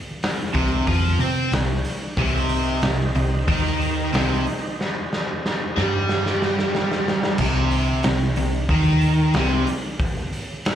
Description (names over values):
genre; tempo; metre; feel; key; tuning
blues rock power trio and southern rock; 92 BPM; 4/4; straight; C minor; A4 = 438 Hz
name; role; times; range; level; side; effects
raw garage drum kit; drums; 0.2-10.8 s; crash cymbal, hi-hat, kick drum, snare drum; -24 LUFS; equal; none
biting overdriven guitar; riff; 0.5-9.7 s; C3 to C4; -22 LUFS; equal; slapback echo
vintage muted picked electric bass; bass; 0.5-9.7 s; C2 to C3; -23 LUFS; equal; none
tonewheel organ; sustained chords; 2.2-7.4 s; Eb4 to E5; -32 LUFS; right 3 dB; slow rotary speaker
room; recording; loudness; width
little or no reverb; live gig heard through the venue's PA, club reverb; -19 LUFS; side -10 dB against mid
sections
0.0-7.4 A section; 7.4-10.8 A section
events
drum fill 4.8-7.4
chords
0.0 Cm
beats
0.23 0.88 1.53 | 2.19 2.84 3.49 4.14 | 4.79 5.45 6.10 6.75 | 7.40 8.05 8.70 9.35 | 10.00 10.65